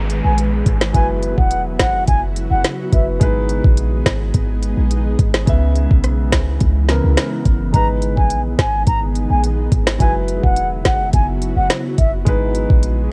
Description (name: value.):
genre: dancehall.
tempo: 106 BPM.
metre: 4/4.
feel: straight.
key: G# minor.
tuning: A4 = 440 Hz.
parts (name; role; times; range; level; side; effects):
warm concert grand piano; accompaniment; 0.0-13.1 s; C#3 to E5; -28 LUFS; equal; sidechain pumping, cassette tape.
ethereal airy pad; sustained chords; 0.0-13.1 s; C#3 to B4; -28 LUFS; equal; ensemble chorus, built-in reverb, sidechain pumping, cassette tape.
clean 808-style bass; bass; 0.0-13.1 s; E1 to C#2; -21 LUFS; equal; none.
downlifter; sound effects; 0.0-3.2 s; none; -38 LUFS; equal; none.
island pop drum kit; drums; 0.1-13.0 s; hi-hat, kick drum, rim click, snare drum; -19 LUFS; equal; none.
baroque flute; melody; 0.2-3.1, 7.7-12.1 s; E5 to A#5; -23 LUFS; equal; cassette tape.
room: digital ambience.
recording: home recording on cassette.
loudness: -16 LUFS.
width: mono.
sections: 0.0-13.1 A section.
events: none.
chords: 0.0 G#m; 0.9 F#7sus4; 3.2 G#m; 5.5 C#m7; 7.7 G#m; 10.0 F#7sus4; 12.3 G#m.